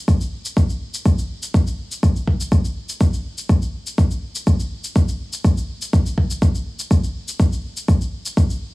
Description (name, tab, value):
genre	house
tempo	123 BPM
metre	4/4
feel	straight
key	none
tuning	none
part	cabasa	drums	0.1-8.6 s	none	-31 LUFS	left 2 dB	sidechain pumping on hats, studio reverb, sidechain pumping on perc
part	electronic kick drum	drums	0.1-8.5 s	none	-16 LUFS	equal	studio reverb
room	little or no reverb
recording	heavily compressed radio sound, small room ambience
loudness	-18 LUFS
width	side -21 dB against mid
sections	0.0-8.7 A section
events	none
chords	none